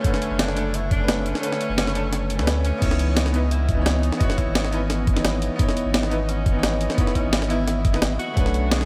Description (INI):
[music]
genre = liquid drum and bass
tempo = 173 BPM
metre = 4/4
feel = straight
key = unclear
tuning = A4 = 440 Hz
[part]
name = clear tenor saxophone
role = melody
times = 0.0-8.9 s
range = B3 to G#4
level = -34 LUFS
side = equal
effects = delay
[part]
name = bright concert grand piano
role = accompaniment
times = 0.0-8.9 s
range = D3 to D#5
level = -30 LUFS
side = equal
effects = tape echo
[part]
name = warm analog pad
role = sustained chords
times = 0.0-8.9 s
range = D3 to D#5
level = -32 LUFS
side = equal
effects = chorus, sidechain pumping
[part]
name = breakbeat sampler-style drum kit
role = drums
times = 0.0-8.9 s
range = crash cymbal, hi-hat, snare drum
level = -29 LUFS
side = equal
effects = none
[part]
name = electronic kick drum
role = drums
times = 0.0-8.4 s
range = none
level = -24 LUFS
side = equal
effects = none
[part]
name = saturated sub bass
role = bass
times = 0.3-8.9 s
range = F#1 to D2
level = -26 LUFS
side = equal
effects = none
[part]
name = swell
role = sound effects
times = 2.3-2.8 s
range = none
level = -44 LUFS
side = equal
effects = none
[sound]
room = moderate cathedral reverb, RT60 6.2 s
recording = dreamy mix soaked in reverb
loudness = -22 LUFS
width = mono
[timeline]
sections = 0.0-8.9 A section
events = kick drops out 1.4-2.8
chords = 0.0 Bm9; 2.8 C#m9; 8.2 Bm9